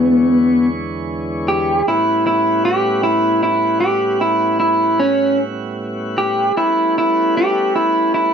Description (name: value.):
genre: blues.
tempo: 51 BPM (dotted quarters).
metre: 12/8.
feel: straight.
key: unclear.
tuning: A4 = 440 Hz.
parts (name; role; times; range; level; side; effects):
electric guitar through a small old amp; melody; 0.0-8.3 s; B3 to G4; -14 LUFS; equal; slapback echo.
tonewheel organ; sustained chords; 0.0-8.3 s; E2 to F#5; -23 LUFS; right 1 dB; slow rotary speaker.
room: moderate club reverb, RT60 0.7 s.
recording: dark, warm production.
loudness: -14 LUFS.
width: side -7 dB against mid.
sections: 0.0-8.3 A section.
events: clean electric guitar solo 0.0-8.3.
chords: 0.0 E13; 1.9 A13.